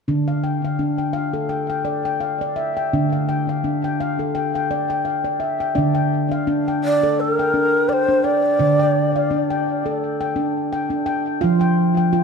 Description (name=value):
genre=world meditative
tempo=85 BPM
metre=4/4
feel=swing 56% on 16ths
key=D minor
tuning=A4 = 439 Hz
part: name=handpan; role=arpeggios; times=0.1-12.2 s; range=D3 to G5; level=-19 LUFS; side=left 1 dB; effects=ping-pong delay
part: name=breathy long shakuhachi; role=melody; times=6.8-9.3 s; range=Bb4 to D5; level=-18 LUFS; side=right 1 dB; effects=ping-pong delay
room=wet echo chamber reverb, RT60 1.7 s, studio reverb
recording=none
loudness=-18 LUFS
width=side -5 dB against mid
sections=0.1-5.8 A section; 5.8-12.2 B section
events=none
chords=0.1 Dm; 11.4 F5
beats=| 0.09 0.80 1.51 2.22 | 2.93 3.64 4.35 5.06 | 5.77 6.48 7.19 7.89 | 8.60 9.31 10.01 10.72 | 11.43 12.13